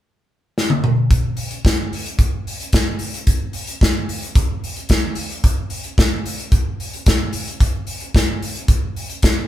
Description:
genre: disco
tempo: 111 BPM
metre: 4/4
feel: straight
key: none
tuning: none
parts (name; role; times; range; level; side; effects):
- modern studio drum kit; drums; 0.6-9.4 s; hi-hat, kick drum, snare drum, toms; -17 LUFS; equal; none
room: wet studio reverb, RT60 0.8 s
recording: band playing live in one room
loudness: -17 LUFS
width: side -13 dB against mid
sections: 0.0-1.1 A section; 1.1-9.5 B section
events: drum fill 0.6-1.1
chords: none

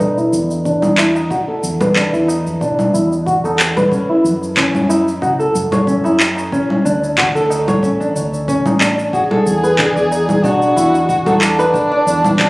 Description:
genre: organic downtempo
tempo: 92 BPM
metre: 4/4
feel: swing 53% on 16ths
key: E mixolydian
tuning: A4 = 441 Hz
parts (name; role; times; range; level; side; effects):
- flamenco guitar; arpeggios; 0.0-12.5 s; C#4 to D5; -16 LUFS; equal; low-pass filter, ping-pong delay
- woody fretless electric bass; bass; 0.0-12.5 s; A1 to F#2; -21 LUFS; equal; none
- electronic cabasa, congas and handclaps; drums; 0.0-12.5 s; none; -17 LUFS; equal; overdrive
- electronic kick drum; drums; 0.0-12.5 s; none; -25 LUFS; equal; none
- tabla; percussion; 0.0-12.4 s; none; -28 LUFS; right 1 dB; none
- clear duduk; melody; 9.1-12.5 s; D4 to G#4; -15 LUFS; equal; none
room: moderate lush hall reverb, RT60 2.6 s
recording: recorded on a phone in the room, club reverb, compression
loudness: -12 LUFS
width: side -22 dB against mid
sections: 0.0-12.5 A section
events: filter sweep on nylon-string guitar 0.0-12.5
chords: 0.0 E7(no3); 3.9 F#7(no3); 6.5 Dmaj7(no3); 9.1 E7sus2

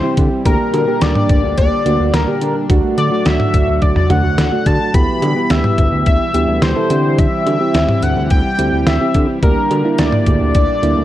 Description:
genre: synth-pop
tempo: 107 BPM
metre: 4/4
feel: straight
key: unclear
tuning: A4 = 441 Hz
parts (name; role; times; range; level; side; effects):
- octave-doubled lead; melody; 0.0-11.0 s; Bb4 to B5; -19 LUFS; left 2 dB; chorus, phaser
- soft electric-piano-like synth keys; accompaniment; 0.0-11.0 s; A3 to A4; -19 LUFS; right 2 dB; chorus
- lush unison pad; sustained chords; 0.0-11.0 s; A2 to G4; -23 LUFS; equal; chorus
- fat analog bass; bass; 0.2-11.0 s; D2 to D3; -18 LUFS; equal; none
- detuned 8-bit digital drum machine; drums; 0.2-11.0 s; cowbell, hi-hat, kick drum, snare drum, toms; -16 LUFS; equal; none
room: light reverb, digital ambience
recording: worn, warbling old tape, cassette tape, warbly pitch drift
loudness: -12 LUFS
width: side -13 dB against mid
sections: 0.0-11.0 A section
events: none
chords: 0.5 Gm/D; 2.7 D; 4.9 Em/D; 6.9 C; 9.4 Gm/D

